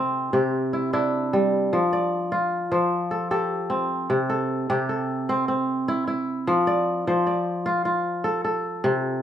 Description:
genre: west african traditional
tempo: 101 BPM (dotted quarters)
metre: 12/8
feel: straight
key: C major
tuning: A4 = 442 Hz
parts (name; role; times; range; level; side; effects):
- kora; solo; 0.0-9.2 s; C3 to D5; -22 LUFS; equal; none
room: moderate large studio reverb, RT60 0.9 s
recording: band playing live in one room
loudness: -22 LUFS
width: side -10 dB against mid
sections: 0.0-4.1 A section; 4.1-9.2 B section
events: none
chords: 0.0 C; 1.7 F; 4.1 C; 6.5 F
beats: 0.53 1.13 | 1.72 2.32 2.91 3.50 | 4.10 4.69 5.29 5.88 | 6.47 7.07 7.66 8.25 | 8.84

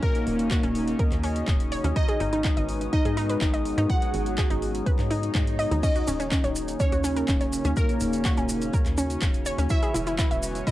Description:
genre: melodic techno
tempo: 124 BPM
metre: 4/4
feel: straight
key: Eb phrygian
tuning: A4 = 438 Hz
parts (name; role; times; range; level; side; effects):
- fat analog lead; melody; 0.0-10.7 s; Bb3 to Gb4; -31 LUFS; left 1 dB; lush chorus, sidechain pumping, analog delay
- glassy wavetable pluck; second line; 0.0-10.7 s; Bb4 to Gb5; -34 LUFS; equal; chorus, sidechain pumping, cassette tape, analog delay
- dark analog pad; sustained chords; 0.0-10.7 s; Ab3 to Eb5; -33 LUFS; left 1 dB; chorus, sidechain pumping, cassette tape
- analog drone; drone; 0.0-10.7 s; Db3 to Db4; -39 LUFS; left 1 dB; chorus, sidechain pumping, cassette tape
- deep house drum kit; drums; 0.0-10.7 s; crash cymbal, handclaps, hi-hat; -36 LUFS; equal; overdrive, studio reverb, cassette tape
- electronic kick drum; drums; 0.0-10.7 s; none; -25 LUFS; equal; overdrive, studio reverb, cassette tape
- deep dark ambient pad; texture; 0.0-10.7 s; Eb4 to Eb6; -38 LUFS; right 2 dB; chorus, built-in reverb, sidechain pumping, cassette tape
- tight sequencer bass; bass; 0.3-10.6 s; Eb1 to Ab2; -30 LUFS; equal; sidechain pumping
- wide unison pluck; arpeggios; 0.5-10.7 s; Db4 to E5; -30 LUFS; equal; cassette tape, sidechain pumping, analog delay
- swell; sound effects; 5.0-5.8 s; none; -35 LUFS; left 8 dB; none
- maracas; percussion; 5.8-10.7 s; none; -38 LUFS; right 1 dB; none
room: little or no reverb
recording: home recording on cassette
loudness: -22 LUFS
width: side -15 dB against mid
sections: 0.0-10.7 A section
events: swell 5.0-5.8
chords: 0.0 Ebm7; 2.0 Abm7; 5.8 Ebm7; 9.7 Eadd9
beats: | 0.03 0.51 0.99 1.48 | 1.96 2.44 2.93 3.41 | 3.90 4.38 4.86 5.35 | 5.83 6.32 6.80 7.28 | 7.77 8.25 8.73 9.22 | 9.70 10.19 10.67

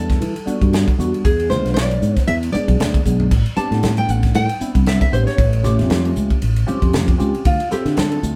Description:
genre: electric jazz fusion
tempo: 116 BPM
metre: 4/4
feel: swing 56% on 16ths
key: unclear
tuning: A4 = 440 Hz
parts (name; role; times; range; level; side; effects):
- nylon-string guitar; melody; 0.0-8.4 s; F4 to A5; -26 LUFS; equal; none
- bright tine electric piano; accompaniment; 0.0-8.4 s; G3 to A4; -26 LUFS; equal; phaser
- fretless electric bass; bass; 0.0-8.4 s; A1 to E3; -21 LUFS; equal; none
- crisp fusion drum kit; drums; 0.1-8.4 s; crash cymbal, hi-hat, kick drum, ride cymbal, snare drum, toms; -22 LUFS; equal; none
- congas; percussion; 0.2-8.1 s; none; -29 LUFS; equal; none
room: moderate studio reverb, RT60 0.8 s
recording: band playing live in one room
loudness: -17 LUFS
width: mono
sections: 0.0-8.4 A section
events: drum fill 3.1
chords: 0.0 Em9; 1.3 E7b9; 3.3 Am11; 5.4 A7alt; 7.5 Dm9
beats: 0.22 0.73 | 1.25 1.77 2.29 2.80 | 3.32 3.84 4.36 4.87 | 5.39 5.91 6.42 6.94 | 7.46 7.98

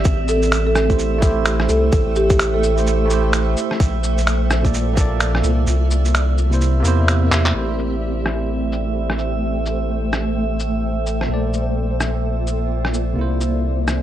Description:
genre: future garage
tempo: 128 BPM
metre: 4/4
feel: swing 61% on 16ths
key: A phrygian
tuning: A4 = 440 Hz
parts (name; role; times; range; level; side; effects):
- granular cloud pad; sustained chords; 0.0-14.0 s; A3 to G5; -25 LUFS; equal; built-in reverb, sidechain pumping
- warm sub bass; bass; 0.0-14.0 s; A1 to E2; -20 LUFS; equal; transformer saturation, sidechain pumping
- electronic shaker, cabasa, finger snaps, rim click and handclaps; drums; 0.0-14.0 s; none; -23 LUFS; equal; overdrive, low-pass filter on perc, studio reverb, low-pass filter on snare
- drifting glass-harmonics texture; texture; 0.0-14.0 s; E5; -29 LUFS; right 6 dB; chorus, built-in reverb
- electronic kick drum; drums; 0.1-5.1 s; none; -18 LUFS; equal; studio reverb
- marimba with soft mallets; melody; 0.3-3.2 s; G4 to A4; -21 LUFS; right 1 dB; vintage 12-bit sampler grit, tape echo
- bell-like tine electric piano; accompaniment; 0.9-14.0 s; Bb2 to D5; -25 LUFS; right 2 dB; medium stereo tremolo, sidechain pumping, low-pass filter, analog delay
room: light reverb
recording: dry, gritty hardware recording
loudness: -16 LUFS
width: side -12 dB against mid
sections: 0.0-7.6 A section; 7.6-14.0 B section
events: kick drops out 5.7-7.6; drum fill 7.3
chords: 0.1 Am7; 3.8 Bbmaj7; 5.7 C7; 7.6 Am7; 11.3 Bbmaj7; 13.2 C7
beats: | 0.05 0.52 0.99 1.46 | 1.93 2.39 2.86 3.33 | 3.80 4.27 4.74 5.21 | 5.68 6.14 6.61 7.08 | 7.55 8.02 8.49 8.96 | 9.43 9.89 10.36 10.83 | 11.30 11.77 12.24 12.71 | 13.18 13.64

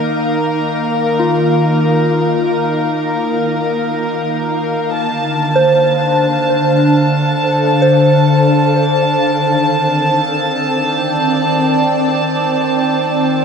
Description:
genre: ambient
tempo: free time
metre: none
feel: none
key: unclear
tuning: A4 = 440 Hz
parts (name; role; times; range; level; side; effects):
- glassy FM pad; sustained chords; 0.0-13.4 s; D3 to G5; -15 LUFS; equal; ensemble chorus, built-in reverb, shimmer reverb
- soft synth bell; arpeggios; 0.0-9.1 s; F4 to C5; -18 LUFS; right 1 dB; chorus, phaser, tape echo, shimmer reverb
- warm studio violin section; texture; 0.0-13.4 s; Bb4 to A5; -18 LUFS; equal; shimmer reverb
room: wet huge ambient reverb, RT60 7.5 s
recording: none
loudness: -12 LUFS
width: side -6 dB against mid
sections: 0.0-5.0 A section; 5.0-13.4 B section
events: none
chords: 0.0 Ebsus2; 5.0 Dm; 8.7 Cmadd9/Eb; 12.4 Eb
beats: free time

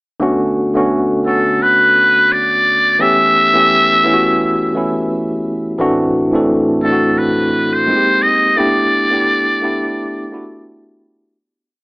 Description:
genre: R&B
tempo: 86 BPM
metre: 4/4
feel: swing 55% on 16ths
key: unclear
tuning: A4 = 440 Hz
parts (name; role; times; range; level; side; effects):
- tine electric piano; accompaniment; 0.2-11.4 s; A2 to A4; -15 LUFS; equal; slow stereo tremolo
- trumpet with metal mute; melody; 1.3-10.7 s; A4 to E5; -12 LUFS; equal; none
room: light reverb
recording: AM radio sound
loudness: -11 LUFS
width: side -32 dB against mid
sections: 0.2-11.4 verse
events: fade-out 8.6-11.4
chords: 0.2 Bm9; 3.0 A7; 5.8 D9/A; 7.9 G#maj7; 8.6 A7sus4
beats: | 0.20 0.89 1.59 2.29 | 2.99 3.68 4.38 5.08 | 5.78 6.47 7.17 7.87 | 8.57 9.27 9.96 10.66

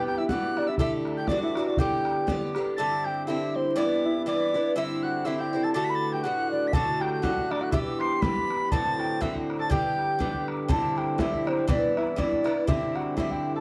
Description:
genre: celtic folk, Celtic polka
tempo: 121 BPM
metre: 2/4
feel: swing 56% on 8ths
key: unclear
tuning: A4 = 440 Hz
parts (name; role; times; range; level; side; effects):
- mellow hollow wooden flute; melody; 0.0-13.6 s; C5 to C6; -31 LUFS; equal; tape echo
- bright tin whistle; second line; 0.0-10.5 s; C6 to C7; -38 LUFS; equal; none
- concert harp; second line; 0.0-13.6 s; C4 to C5; -35 LUFS; equal; none
- Irish bouzouki; accompaniment; 0.0-13.6 s; G2 to G4; -32 LUFS; equal; none
- bodhran; percussion; 0.1-2.7, 6.7-13.4 s; none; -32 LUFS; equal; none
room: moderate studio ambience, RT60 0.5 s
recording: dark, warm production, vinyl crackle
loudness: -27 LUFS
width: mono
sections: 0.0-2.8 A section; 2.8-10.7 B section; 10.7-13.6 B section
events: none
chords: 0.0 Em; 0.8 Dsus4; 1.3 Dadd9; 1.8 G; 2.8 Cadd9; 3.8 Em; 4.8 Cadd9; 5.7 D; 7.7 Em; 8.7 D7; 9.7 G; 10.7 Cadd9; 11.7 Em; 12.7 Cadd9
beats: 0.30 | 0.79 1.29 | 1.78 2.28 | 2.77 3.27 | 3.77 4.26 | 4.76 5.25 | 5.75 6.24 | 6.74 7.23 | 7.73 8.22 | 8.72 9.21 | 9.71 10.20 | 10.70 11.19 | 11.69 12.18 | 12.68 13.18

